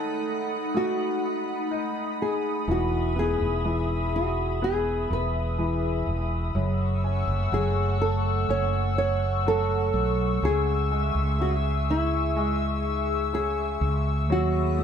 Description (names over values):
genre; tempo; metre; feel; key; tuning
pop; 62 BPM; 4/4; straight; E major; A4 = 440 Hz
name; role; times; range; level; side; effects
nylon-string guitar; melody; 0.0-14.8 s; E4 to C#5; -28 LUFS; right 1 dB; none
bright concert grand piano; accompaniment; 0.0-14.8 s; C#3 to D#4; -32 LUFS; left 1 dB; none
glassy FM pad; sustained chords; 0.0-14.8 s; A3 to E6; -29 LUFS; left 4 dB; ensemble chorus, built-in reverb
mellow fretless electric bass; bass; 2.7-14.8 s; E1 to D#2; -26 LUFS; right 1 dB; none
room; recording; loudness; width
moderate studio reverb, RT60 0.6 s; band playing live in one room; -23 LUFS; side -8 dB against mid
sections
0.0-14.8 A section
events
none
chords
0.0 B7/D#; 2.7 Emaj7; 6.6 F#m7; 10.4 C#m; 14.3 B7/D#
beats
0.75 1.72 | 2.69 3.65 4.62 5.59 | 6.56 7.52 8.49 9.46 | 10.43 11.39 12.36 13.33 | 14.30